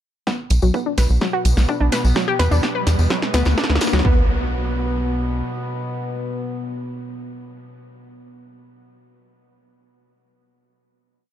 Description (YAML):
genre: melodic techno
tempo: 127 BPM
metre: 4/4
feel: straight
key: B minor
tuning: A4 = 438 Hz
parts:
  - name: analog pluck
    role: arpeggios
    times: 0.3-4.3 s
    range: F#3 to B4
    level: -24 LUFS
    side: left 1 dB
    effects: chorus, sidechain pumping, ping-pong delay
  - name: analog drone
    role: drone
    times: 0.7-8.0 s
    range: B2 to B3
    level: -29 LUFS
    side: left 1 dB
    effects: chorus, sidechain pumping
  - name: techno drum kit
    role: drums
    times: 0.3-4.2 s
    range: kick drum, toms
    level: -21 LUFS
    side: equal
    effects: high-pass filter on kick, high-pass filter on toms, high-pass filter on room
  - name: techno drum kit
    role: drums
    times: 0.3-4.1 s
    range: hi-hat, snare drum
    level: -25 LUFS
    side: equal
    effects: sidechain pumping on hats
  - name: tambourine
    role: percussion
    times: 0.3-4.0 s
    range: none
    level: -34 LUFS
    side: left 5 dB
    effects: none
  - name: riser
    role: sound effects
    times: 2.1-4.0 s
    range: none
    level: -30 LUFS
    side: equal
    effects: none
  - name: tight sequencer bass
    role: bass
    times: 0.5-5.4 s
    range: B1 to E2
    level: -18 LUFS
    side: equal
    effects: sidechain pumping
room: light reverb, digital ambience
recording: dark, warm production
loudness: -17 LUFS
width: side -11 dB against mid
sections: 0.3-4.0 build; 4.0-7.8 final chord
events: build-up 0.3-4.0; drum fill 0.3-4.0; filter sweep on synth pluck 0.3-4.0; riser 2.1-4.0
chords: 0.3 Bm; 2.2 E5; 3.1 N.C.